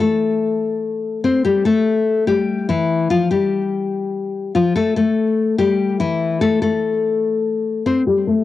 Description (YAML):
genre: hip hop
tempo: 145 BPM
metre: 4/4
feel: half-time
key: A minor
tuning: A4 = 439 Hz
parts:
  - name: nylon-string guitar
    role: solo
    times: 0.0-8.4 s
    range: E3 to C5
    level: -16 LUFS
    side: left 4 dB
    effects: low-pass filter, cassette tape
room: moderate booth ambience, RT60 0.2 s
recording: home recording on cassette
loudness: -16 LUFS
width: side -13 dB against mid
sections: 0.0-8.1 A section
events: none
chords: 0.0 Am; 1.4 Gsus2; 3.1 Fsus2; 4.8 A7(no3)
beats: 0.20 0.62 1.03 | 1.45 1.86 2.27 2.69 | 3.10 3.52 3.93 4.34 | 4.76 5.17 5.58 6.00 | 6.41 6.83 7.24 7.65 | 8.07